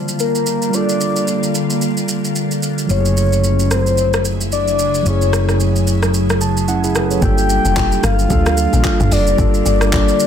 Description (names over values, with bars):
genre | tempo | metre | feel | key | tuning
amapiano | 111 BPM | 4/4 | swing 58% on 16ths | unclear | A4 = 439 Hz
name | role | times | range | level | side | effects
mellow tine electric piano | accompaniment | 0.0-10.3 s | F#3 to A5 | -20 LUFS | right 5 dB | none
ethereal airy pad | sustained chords | 0.0-10.3 s | C#3 to G#4 | -23 LUFS | left 2 dB | ensemble chorus, built-in reverb, phaser
deep house drum kit | drums | 0.1-10.3 s | handclaps, hi-hat, kick drum, rim click, shaker, toms | -21 LUFS | equal | overdrive
soft octave-layered synth lead | melody | 0.2-10.3 s | Bb4 to G5 | -19 LUFS | left 3 dB | chorus, phaser, tape echo
hollow-body short-scale fingered electric bass | bass | 2.9-7.2 s | F#1 | -17 LUFS | left 1 dB | none
deep log drum bass | bass | 7.2-10.1 s | F1 to D2 | -16 LUFS | left 1 dB | none
congas and bongos | percussion | 7.2-10.1 s | none | -25 LUFS | left 3 dB | none
room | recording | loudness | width
light reverb | dense, heavily limited modern master | -13 LUFS | side -8 dB against mid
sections
0.0-7.2 A section; 7.2-10.3 B section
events
tine electric piano fill 6.1-7.2; drop 7.2-10.3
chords
0.0 Gm9; 2.9 F#m9; 7.2 Gm9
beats
0.20 | 0.74 1.28 1.82 2.36 | 2.90 3.44 3.98 4.52 | 5.06 5.60 6.14 6.68 | 7.22 7.76 8.30 8.85 | 9.38 9.93